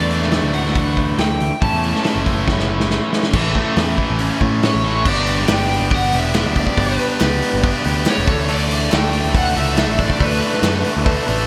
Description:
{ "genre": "indie rock", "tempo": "140 BPM", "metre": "4/4", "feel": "straight", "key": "G lydian", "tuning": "A4 = 440 Hz", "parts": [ { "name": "overdriven semi-hollow guitar", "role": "melody", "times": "0.0-11.5 s", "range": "B4 to A5", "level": "-25 LUFS", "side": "equal", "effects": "lush chorus, digital delay" }, { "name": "biting overdriven guitar", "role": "riff", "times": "0.0-5.1 s", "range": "A2 to A4", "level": "-26 LUFS", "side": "equal", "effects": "ensemble chorus, digital delay" }, { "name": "overdriven electric guitar", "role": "riff", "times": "0.0-11.5 s", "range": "E3 to A4", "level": "-23 LUFS", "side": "equal", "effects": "spring reverb" }, { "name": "picked electric bass", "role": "bass", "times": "0.0-11.5 s", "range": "E1 to A2", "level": "-24 LUFS", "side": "equal", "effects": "none" }, { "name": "vintage drum kit", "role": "drums", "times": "0.1-11.4 s", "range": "crash cymbal, hi-hat, kick drum, snare drum", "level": "-22 LUFS", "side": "equal", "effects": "gated reverb" }, { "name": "mellow tonewheel organ", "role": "sustained chords", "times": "5.1-11.5 s", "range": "A4 to G5", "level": "-35 LUFS", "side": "equal", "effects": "none" }, { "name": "group handclap", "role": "percussion", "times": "5.5-10.7 s", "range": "none", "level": "-35 LUFS", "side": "equal", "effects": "none" } ], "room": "moderate lush hall reverb, RT60 1.5 s, small room ambience", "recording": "bright 1980s-style digital production", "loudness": "-17 LUFS", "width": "mono", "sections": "0.0-3.3 A section; 3.3-5.1 B section; 5.1-11.5 C section", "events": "drum fill 2.5-3.3", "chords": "0.0 Dsus2; 1.6 A; 5.1 G; 8.3 Dsus2", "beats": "0.33 0.76 1.19 | 1.62 2.05 2.48 2.91 | 3.34 3.77 4.20 4.63 | 5.06 5.49 5.92 6.35 | 6.78 7.20 7.63 8.06 | 8.49 8.92 9.35 9.78 | 10.21 10.64 11.07" }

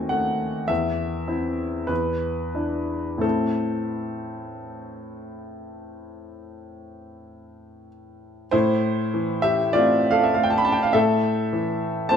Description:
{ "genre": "classical, romantic nocturne for solo piano", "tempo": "43-52 BPM", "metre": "4/4", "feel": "rubato", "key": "A minor", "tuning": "A4 = 440 Hz", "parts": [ { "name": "clear upright piano", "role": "solo", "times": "0.0-12.2 s", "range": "D#2 to B5", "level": "-22 LUFS", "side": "equal", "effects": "none" } ], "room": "moderate large studio reverb, RT60 1.2 s", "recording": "minimal, uncompressed stereo recording", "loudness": "-20 LUFS", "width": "side -7 dB against mid", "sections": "0.0-8.5 A section; 8.5-12.2 B section", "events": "none", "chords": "0.0 D#dim7; 0.7 C/E; 1.9 E5; 3.2 Am", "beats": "0.70 1.90 | 3.23 4.58 5.91 7.23 | 8.53 9.75 10.95 12.11" }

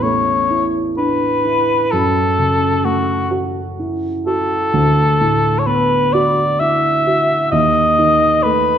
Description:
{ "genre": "classical, romantic duo for cor anglais and grand piano", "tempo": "64 BPM", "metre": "3/4", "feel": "rubato", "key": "unclear", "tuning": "A4 = 440 Hz", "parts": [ { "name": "mellow cor anglais", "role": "melody", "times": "0.0-8.8 s", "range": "F#4 to E5", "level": "-15 LUFS", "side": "left 1 dB", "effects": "none" }, { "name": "dark grand piano", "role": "accompaniment", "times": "0.0-8.8 s", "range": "A1 to F#4", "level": "-18 LUFS", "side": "right 1 dB", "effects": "none" } ], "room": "wet recital hall reverb, RT60 1.5 s", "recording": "recorded in a church or concert hall", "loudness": "-13 LUFS", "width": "side -9 dB against mid", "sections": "0.0-8.8 A section", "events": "none", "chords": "0.0 A5; 1.9 F#m; 4.7 Bm7/D; 7.5 D#(b5, no3)", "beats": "0.03 0.97 | 1.92 2.83 3.78 | 4.74 5.66 6.61 | 7.52 8.44" }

